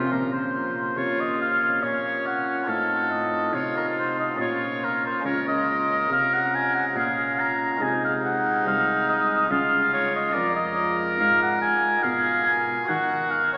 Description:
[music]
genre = classical, baroque-style sonata movement with continuo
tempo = 70 BPM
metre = 3/4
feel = straight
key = Bb minor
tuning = A4 = 442 Hz
[part]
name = warm oboe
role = melody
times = 0.0-13.6 s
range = F4 to Bb5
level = -23 LUFS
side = equal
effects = none
[part]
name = chamber organ, flutes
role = accompaniment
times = 0.0-13.6 s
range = C2 to Bb4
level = -29 LUFS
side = equal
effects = none
[part]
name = warm cello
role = bass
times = 0.0-13.6 s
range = C2 to Eb3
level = -34 LUFS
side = equal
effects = none
[part]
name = clear oboe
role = second line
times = 1.0-13.6 s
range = Db4 to Bb4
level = -26 LUFS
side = equal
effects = none
[sound]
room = wet cathedral reverb, RT60 5.3 s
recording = heard from further back in the room, small speaker sound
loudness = -21 LUFS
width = side -30 dB against mid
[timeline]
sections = 0.1-13.6 A section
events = none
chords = 0.1 Bbm; 2.7 F7/A; 4.4 Bbm; 5.3 Db; 7.8 Ab/C; 9.5 Db; 10.4 Bb5/F; 12.9 Ebm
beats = | 0.11 0.97 1.83 | 2.69 3.54 4.39 | 5.26 6.11 6.97 | 7.82 8.67 9.51 | 10.36 11.20 12.04 | 12.89

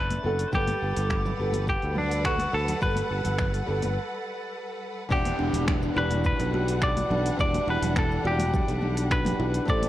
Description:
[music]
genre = sunset chillout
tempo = 105 BPM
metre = 4/4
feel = straight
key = E minor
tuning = A4 = 440 Hz
[part]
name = semi-hollow electric guitar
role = melody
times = 0.0-9.9 s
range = D4 to D5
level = -29 LUFS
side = equal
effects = digital delay
[part]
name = flamenco guitar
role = accompaniment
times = 0.0-9.9 s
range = E3 to F#5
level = -33 LUFS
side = right 1 dB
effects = auto-pan, digital delay
[part]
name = clear symphonic string section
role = sustained chords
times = 0.0-9.9 s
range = E3 to F#5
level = -34 LUFS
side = equal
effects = none
[part]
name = sustaining fretless electric bass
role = bass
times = 0.0-9.9 s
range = E1 to D2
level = -29 LUFS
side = equal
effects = none
[part]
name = drifting glass-harmonics texture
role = texture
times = 0.0-4.0 s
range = A6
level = -45 LUFS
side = equal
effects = chorus, built-in reverb
[part]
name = deep house drum kit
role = drums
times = 0.1-9.9 s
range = congas, finger snaps, hi-hat, shaker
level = -34 LUFS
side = right 2 dB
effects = none
[part]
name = congas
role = percussion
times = 0.1-9.9 s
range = none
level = -36 LUFS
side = left 2 dB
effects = none
[part]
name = electronic kick drum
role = drums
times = 0.5-9.8 s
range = none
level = -28 LUFS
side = equal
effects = none
[part]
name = downlifter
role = sound effects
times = 5.2-9.7 s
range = none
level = -39 LUFS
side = left 1 dB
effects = none
[part]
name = kalimba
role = arpeggios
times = 5.4-9.6 s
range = D4 to F#4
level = -33 LUFS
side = equal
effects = digital delay
[sound]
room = light reverb, studio ambience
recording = worn, warbling old tape, cassette tape, warbly pitch drift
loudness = -23 LUFS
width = side -14 dB against mid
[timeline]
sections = 0.0-5.1 A section; 5.1-9.9 B section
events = break 4.0-5.1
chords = 0.0 Bm7; 0.5 Gmaj9; 5.1 Em9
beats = | 0.53 1.10 1.68 2.25 | 2.82 3.39 3.96 4.53 | 5.11 5.68 6.25 6.82 | 7.39 7.96 8.53 9.11 | 9.68

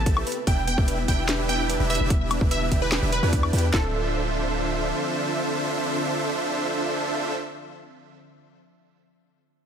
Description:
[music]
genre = future bass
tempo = 147 BPM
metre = 4/4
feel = half-time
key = D dorian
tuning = A4 = 439 Hz
[part]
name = wide unison pluck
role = melody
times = 0.0-7.3 s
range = A4 to A5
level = -29 LUFS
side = right 2 dB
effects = phaser, cassette tape, sidechain pumping, ping-pong delay
[part]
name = ethereal airy pad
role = sustained chords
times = 0.0-7.3 s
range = C3 to E5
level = -35 LUFS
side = equal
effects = ensemble chorus, built-in reverb, sidechain pumping
[part]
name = supersaw chords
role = riff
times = 0.0-7.3 s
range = C4 to G5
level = -27 LUFS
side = right 2 dB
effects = sidechain pumping
[part]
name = warm 808-style bass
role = bass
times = 0.0-4.9 s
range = D1 to E2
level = -26 LUFS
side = equal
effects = sidechain pumping
[part]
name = thumb-piano-like synth pluck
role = arpeggios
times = 0.1-3.9 s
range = B3 to D5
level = -34 LUFS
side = left 5 dB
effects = chorus, cassette tape, sidechain pumping, ping-pong delay
[part]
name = trap drum kit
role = drums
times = 0.1-3.8 s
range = kick drum, snare drum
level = -22 LUFS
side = equal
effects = none
[part]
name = trap drum kit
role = drums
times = 0.1-3.7 s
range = hi-hat, snare drum, woodblock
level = -29 LUFS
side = left 1 dB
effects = none
[sound]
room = light reverb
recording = none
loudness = -22 LUFS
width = side -8 dB against mid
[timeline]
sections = 0.0-3.7 A section; 3.7-7.0 B section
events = drop 0.0-3.7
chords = 0.3 Em7; 3.7 Dm9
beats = 0.06 | 0.47 0.88 1.29 1.70 | 2.10 2.51 2.92 3.33 | 3.74 4.14 4.55 4.96 | 5.37 5.78 6.18 6.59

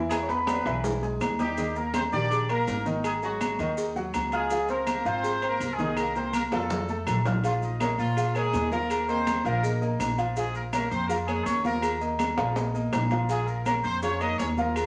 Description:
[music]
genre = latin, salsa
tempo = 164 BPM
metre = 4/4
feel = straight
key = Bb minor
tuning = A4 = 443 Hz
[part]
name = dark grand piano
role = accompaniment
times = 0.0-14.9 s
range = Eb3 to F6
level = -33 LUFS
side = equal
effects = none
[part]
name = upright bass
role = bass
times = 0.0-14.9 s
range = Ab1 to Bb2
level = -34 LUFS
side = equal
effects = none
[part]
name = clear horn section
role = melody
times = 0.1-14.9 s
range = F3 to Eb5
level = -33 LUFS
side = equal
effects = none
[part]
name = claves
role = percussion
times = 0.1-14.9 s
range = none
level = -44 LUFS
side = equal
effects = none
[part]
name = congas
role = percussion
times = 0.1-14.9 s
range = none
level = -37 LUFS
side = equal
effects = none
[part]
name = cowbell and bongos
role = percussion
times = 0.1-14.9 s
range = none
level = -39 LUFS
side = equal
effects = none
[part]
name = maracas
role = percussion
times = 0.1-14.9 s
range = none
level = -49 LUFS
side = equal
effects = none
[part]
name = timbales and agogo bells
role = percussion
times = 0.1-14.9 s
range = none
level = -34 LUFS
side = equal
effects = none
[sound]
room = wet studio reverb, RT60 0.7 s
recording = none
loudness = -27 LUFS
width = mono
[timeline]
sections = 0.0-7.4 A section; 7.4-14.9 B section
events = drum fill 0.1-1.6, 6.0-7.4, 12.4-13.3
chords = 0.1 E; 1.6 Ebmaj7; 3.0 Ab5; 4.5 Dbmaj7; 6.0 Cm7; 6.7 F; 7.4 Bbm; 8.9 Ebsus2; 10.4 Bbm; 11.8 Ebsus2; 13.3 Bbm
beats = | 0.10 0.47 0.84 1.21 | 1.57 1.94 2.31 2.68 | 3.04 3.41 3.78 4.14 | 4.51 4.88 5.24 5.61 | 5.97 6.34 6.71 7.07 | 7.44 7.80 8.17 8.54 | 8.90 9.27 9.63 10.00 | 10.37 10.73 11.10 11.46 | 11.83 12.20 12.56 12.93 | 13.29 13.66 14.03 14.39 | 14.76

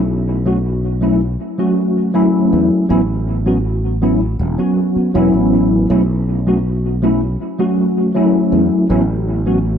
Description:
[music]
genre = vaporwave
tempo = 80 BPM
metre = 4/4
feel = straight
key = unclear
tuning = A4 = 438 Hz
[part]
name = sustaining fretless electric bass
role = bass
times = 0.0-9.8 s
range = E1 to E2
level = -17 LUFS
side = equal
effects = tube saturation, lush chorus
[part]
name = tine electric piano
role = accompaniment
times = 0.5-9.6 s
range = F#3 to F#4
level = -14 LUFS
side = equal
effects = medium tremolo, ensemble chorus, analog delay
[sound]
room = moderate spring reverb, RT60 1.9 s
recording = echo-heavy mix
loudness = -13 LUFS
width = side -8 dB against mid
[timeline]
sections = 0.0-9.8 A section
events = none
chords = 0.0 B9sus4; 2.9 A69; 5.9 B9sus4; 8.9 A69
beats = 0.65 1.40 2.15 | 2.90 3.65 4.40 5.15 | 5.90 6.65 7.40 8.15 | 8.90 9.65

